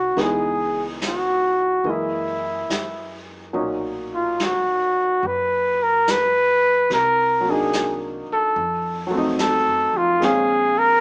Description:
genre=jazz ballad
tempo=72 BPM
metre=4/4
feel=swing 67% on 8ths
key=unclear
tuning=A4 = 437 Hz
part: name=breathy trumpet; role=melody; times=0.0-11.0 s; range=Fb4 to B4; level=-21 LUFS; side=equal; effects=none
part: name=clear baby grand piano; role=accompaniment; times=0.0-11.0 s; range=A#2 to F5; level=-29 LUFS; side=equal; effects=none
part: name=upright bass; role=bass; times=0.0-11.0 s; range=Bb1 to Gb2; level=-40 LUFS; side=equal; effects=none
part: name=vintage brush drum kit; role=drums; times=0.2-11.0 s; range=brushed snare drum, hi-hat, snare drum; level=-33 LUFS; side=equal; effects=none
room=moderate studio reverb, RT60 0.8 s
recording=band playing live in one room, small speaker sound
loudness=-21 LUFS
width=mono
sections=0.0-11.0 A section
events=none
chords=0.2 Dbm7; 1.8 Gb13; 3.5 Bmaj7; 6.9 Cm7b5; 8.6 F7b9; 10.2 Bbm9

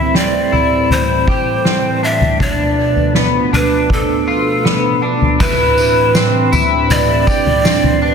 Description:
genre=dream pop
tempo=80 BPM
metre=4/4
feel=straight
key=A minor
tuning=A4 = 440 Hz
part: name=breathy bright large pan pipes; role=melody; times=0.0-8.1 s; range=A4 to E5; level=-17 LUFS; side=right 2 dB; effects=ping-pong delay
part: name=phased analog pad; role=sustained chords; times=0.0-8.1 s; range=A2 to B4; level=-18 LUFS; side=right 3 dB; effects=phaser, chorus
part: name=electric guitar at the edge of break-up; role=arpeggios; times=0.0-8.1 s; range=B3 to G4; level=-17 LUFS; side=left 4 dB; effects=analog chorus, ping-pong delay
part: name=soft-mallet drum kit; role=drums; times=0.1-8.0 s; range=crash cymbal, kick drum, snare drum, tambourine, toms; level=-16 LUFS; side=left 1 dB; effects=none
room=moderate concert hall reverb, RT60 2.1 s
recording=dense, heavily limited modern master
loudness=-11 LUFS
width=side -6 dB against mid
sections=0.0-5.4 A section; 5.4-8.1 B section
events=none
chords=0.0 Am7; 2.4 Bm7b5; 5.4 Am11

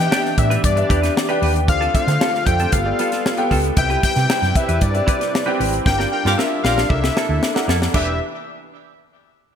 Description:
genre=polished 1980s jazz-funk pop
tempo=115 BPM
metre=4/4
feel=straight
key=E minor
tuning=A4 = 439 Hz
part: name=fat analog lead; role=melody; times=0.0-8.2 s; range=D5 to G5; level=-22 LUFS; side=left 3 dB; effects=ping-pong delay
part: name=warm concert grand piano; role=accompaniment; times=0.0-8.2 s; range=B3 to G5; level=-24 LUFS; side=left 1 dB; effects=analog chorus
part: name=hollow soft pad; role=sustained chords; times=0.0-8.2 s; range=C3 to A5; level=-29 LUFS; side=equal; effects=chorus
part: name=semi-hollow electric guitar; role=riff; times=0.0-8.1 s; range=Bb3 to D5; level=-27 LUFS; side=right 4 dB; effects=wide subtle chorus
part: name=hollow-body short-scale fingered electric bass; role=bass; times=0.0-8.2 s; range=E1 to D3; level=-20 LUFS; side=right 1 dB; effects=none
part: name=tight funk drum kit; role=drums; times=0.0-8.1 s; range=crash cymbal, hi-hat, kick drum, snare drum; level=-20 LUFS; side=equal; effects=gated reverb
part: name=warm horn section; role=second line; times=6.2-8.1 s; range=E3 to Bb4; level=-26 LUFS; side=right 2 dB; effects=ping-pong delay
room=moderate lush hall reverb, RT60 1.6 s, small room ambience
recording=bright 1980s-style digital production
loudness=-16 LUFS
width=side -8 dB against mid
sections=0.0-7.9 A section; 7.9-9.6 B section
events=drum fill 5.9-7.9; band accent 5.9-7.9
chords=0.0 Em7; 1.7 Dm7; 2.7 G9; 3.8 Cmaj7; 5.9 Gm7; 6.9 C13; 7.9 Em7

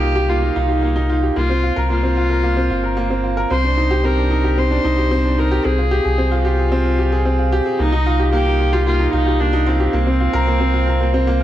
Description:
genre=piano and strings electronica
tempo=112 BPM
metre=4/4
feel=straight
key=unclear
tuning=A4 = 440 Hz
part: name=warm viola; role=melody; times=0.0-11.4 s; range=C4 to C5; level=-22 LUFS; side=equal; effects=none
part: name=bright upright piano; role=riff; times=0.0-11.4 s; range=Bb3 to Bb4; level=-19 LUFS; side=right 1 dB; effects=digital delay
part: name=warm sub bass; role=bass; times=0.0-11.4 s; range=G1 to C2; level=-18 LUFS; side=equal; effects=none
room=light reverb, small room ambience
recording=dark, warm production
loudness=-15 LUFS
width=side -12 dB against mid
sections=0.0-11.4 A section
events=none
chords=0.0 Ebadd9/C; 1.4 Bbsus2/C; 3.5 Cmadd9; 5.7 Fmadd9/C; 7.8 Ebadd9/C; 9.9 Bbsus2/C

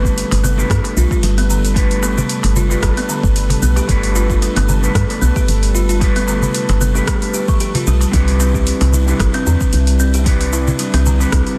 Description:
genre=organic downtempo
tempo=113 BPM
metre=4/4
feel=swing 55% on 16ths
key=G mixolydian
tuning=A4 = 442 Hz
part: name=mellow electric guitar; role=accompaniment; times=0.0-11.6 s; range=A3 to B4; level=-26 LUFS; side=equal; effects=sidechain pumping, low-pass filter, digital delay
part: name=warm analog pad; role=sustained chords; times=0.0-11.6 s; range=C3 to B4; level=-27 LUFS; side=equal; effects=chorus, sidechain pumping
part: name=woody FM bass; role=bass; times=0.0-11.4 s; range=G1 to G2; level=-17 LUFS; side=equal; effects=none
part: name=electronic kick drum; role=drums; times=0.0-11.4 s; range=none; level=-20 LUFS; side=equal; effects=none
part: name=deep house drum kit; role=drums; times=0.1-11.6 s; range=hi-hat, rim click, shaker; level=-26 LUFS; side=equal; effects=overdrive
part: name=darbuka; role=percussion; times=0.3-11.3 s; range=none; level=-26 LUFS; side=equal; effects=none
part: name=buzzing kalimba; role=arpeggios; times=0.4-11.1 s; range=D3 to G4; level=-25 LUFS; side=equal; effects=low-pass filter, digital delay
room=moderate scoring stage reverb, RT60 1.9 s, digital ambience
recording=dense, heavily limited modern master, lossy compression artefacts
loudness=-15 LUFS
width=mono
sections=0.0-11.6 A section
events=none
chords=0.0 G7; 8.1 Cmaj7

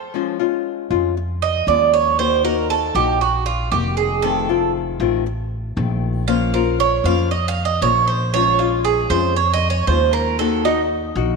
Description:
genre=latin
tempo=117 BPM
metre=4/4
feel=straight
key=unclear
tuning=A4 = 440 Hz
part: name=nylon-string guitar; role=accompaniment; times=0.1-11.4 s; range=C3 to C5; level=-22 LUFS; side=left 12 dB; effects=none
part: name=upright bass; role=bass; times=0.9-11.4 s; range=F1 to F2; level=-22 LUFS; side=equal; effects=none
part: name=Cuban tres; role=arpeggios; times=1.4-10.8 s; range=Eb4 to F5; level=-18 LUFS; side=right 8 dB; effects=none
room=wet echo chamber reverb, RT60 2.0 s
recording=1960s-style stereo with parts hard left and right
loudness=-16 LUFS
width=side -4 dB against mid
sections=0.1-11.4 A section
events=Cuban tres solo 0.1-11.4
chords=0.1 Eb9sus4; 2.2 Ebm; 4.2 F7; 6.3 Bbmadd9; 8.3 Bbm7; 10.4 Ebm

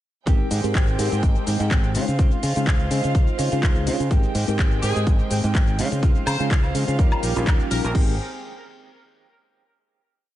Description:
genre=filtered disco house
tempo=125 BPM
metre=4/4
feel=swing 55% on 16ths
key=Ab major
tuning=A4 = 441 Hz
part: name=mellow tine electric piano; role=accompaniment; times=0.3-8.1 s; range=G3 to C5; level=-28 LUFS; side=equal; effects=medium stereo tremolo, phaser, sidechain pumping
part: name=muted studio violin section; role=sustained chords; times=0.3-8.2 s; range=Ab3 to G5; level=-33 LUFS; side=right 1 dB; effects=vintage 12-bit sampler grit, sidechain pumping
part: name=direct-recorded clean electric guitar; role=riff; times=0.3-8.2 s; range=Eb3 to G4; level=-32 LUFS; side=right 4 dB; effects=lush chorus, sidechain pumping, tape echo
part: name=fingered electric bass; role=bass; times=0.3-8.2 s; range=Ab1 to Db3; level=-24 LUFS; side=equal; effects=tube saturation, sidechain pumping
part: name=electronic kick drum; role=drums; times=0.3-8.1 s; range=none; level=-19 LUFS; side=equal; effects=studio reverb
part: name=house drum kit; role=drums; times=0.3-8.1 s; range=crash cymbal, handclaps, hi-hat, shaker, woodblock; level=-30 LUFS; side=left 1 dB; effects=sidechain pumping on hats, studio reverb, sidechain pumping on perc, sidechain pumping on cymbals, tape echo
part: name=clear horn section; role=melody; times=4.8-7.9 s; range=Ab4 to C5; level=-32 LUFS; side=left 1 dB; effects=sidechain pumping, tape echo
room=little or no reverb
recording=echo-heavy mix, nothing above 10.4 kHz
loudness=-18 LUFS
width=side -14 dB against mid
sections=0.3-7.9 drop; 7.9-9.9 final chord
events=drop 0.3-7.9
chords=0.3 Abmaj7; 1.9 Dbmaj7; 4.1 Abmaj7; 5.8 Dbmaj7; 7.0 Eb9; 7.9 Abmaj7

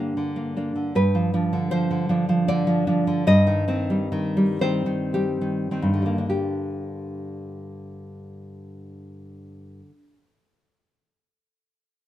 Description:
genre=romantic piece for solo classical guitar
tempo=48-80 BPM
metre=3/4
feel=rubato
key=G minor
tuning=A4 = 440 Hz
part: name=nylon-string guitar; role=solo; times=0.0-10.3 s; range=G2 to Eb5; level=-22 LUFS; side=equal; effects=none
room=light reverb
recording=minimal, uncompressed stereo recording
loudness=-20 LUFS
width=side -13 dB against mid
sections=1.0-6.3 A section; 6.3-12.1 B section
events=slowing down 0.0-6.3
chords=0.0 Gm; 1.0 G7; 3.3 Cm/G; 6.3 Gm

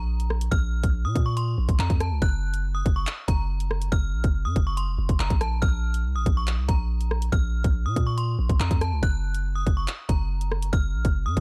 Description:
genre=hip hop, drill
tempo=141 BPM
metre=4/4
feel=half-time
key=Bb harmonic minor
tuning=A4 = 440 Hz
part: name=metallic FM bell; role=melody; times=0.0-11.4 s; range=A5 to Gb6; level=-36 LUFS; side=equal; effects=chorus
part: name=long sustained 808-style bass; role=bass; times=0.0-11.4 s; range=F1 to Bb2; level=-28 LUFS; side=equal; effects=none
part: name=drill drum kit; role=drums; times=0.2-11.4 s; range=handclaps, hi-hat, kick drum, rim click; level=-26 LUFS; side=equal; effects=none
room=little or no reverb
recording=dark, warm production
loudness=-25 LUFS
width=mono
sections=0.0-11.4 A section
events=none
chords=0.0 Bb5; 2.2 Gb; 5.6 Bb5; 9.0 Gb

